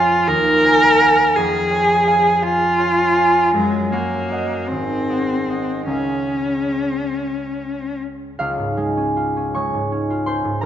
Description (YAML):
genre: classical, romantic duo for cello and harp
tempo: 46-57 BPM (dotted quarters)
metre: 6/8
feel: rubato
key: Db major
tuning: A4 = 440 Hz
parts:
  - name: rich cello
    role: melody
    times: 0.0-8.0 s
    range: Ab3 to Bb4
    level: -18 LUFS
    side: left 1 dB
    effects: none
  - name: concert harp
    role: accompaniment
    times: 0.0-10.7 s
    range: Ab1 to Db6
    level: -19 LUFS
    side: right 1 dB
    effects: none
room: moderate concert hall reverb, RT60 2.4 s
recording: nothing above 7.8 kHz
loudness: -16 LUFS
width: side -10 dB against mid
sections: 0.0-8.4 A section; 8.4-10.7 B section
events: none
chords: 0.3 Ab7/Eb; 1.4 Db/F; 3.5 Ebm7/Gb; 4.7 Ab7; 5.9 Db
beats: 0.27 | 1.36 2.43 | 3.55 4.69 | 5.91 7.18 | 8.41 9.58